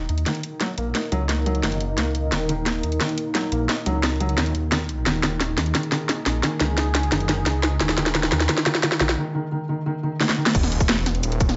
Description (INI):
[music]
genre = dark technical drum and bass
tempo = 175 BPM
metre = 4/4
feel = straight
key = Eb minor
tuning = A4 = 440 Hz
[part]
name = deep dark ambient pad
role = sustained chords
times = 0.5-11.6 s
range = Bb3 to Bb4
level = -33 LUFS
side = equal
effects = chorus, built-in reverb, vintage 12-bit sampler grit, sidechain pumping
[part]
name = detuned saw bass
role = bass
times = 0.0-11.6 s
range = Eb1 to Eb2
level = -27 LUFS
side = equal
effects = chorus, sidechain pumping
[part]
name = felt-muted upright piano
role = arpeggios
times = 0.1-10.5 s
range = Eb3 to Eb4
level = -30 LUFS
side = equal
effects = sidechain pumping, low-pass filter, tape echo
[part]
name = drum and bass drum kit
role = drums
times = 0.1-11.6 s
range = cabasa, crash cymbal, hi-hat, snare drum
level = -25 LUFS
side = equal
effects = overdrive, studio reverb
[part]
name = electronic kick drum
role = drums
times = 10.5-11.5 s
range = none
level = -22 LUFS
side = equal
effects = overdrive, studio reverb
[part]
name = sub drop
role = sound effects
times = 10.5-11.6 s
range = none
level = -35 LUFS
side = equal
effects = none
[sound]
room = light reverb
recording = nothing above 7.8 kHz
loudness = -23 LUFS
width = mono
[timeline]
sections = 0.0-10.5 A section; 10.5-11.6 B section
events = build-up 0.0-10.5; drum fill 0.0-9.2, 10.2-10.5; filter sweep on felt piano 0.0-10.5; break 9.2-10.5; drop 10.5-11.6; impact 10.5-11.6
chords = 0.0 Eb5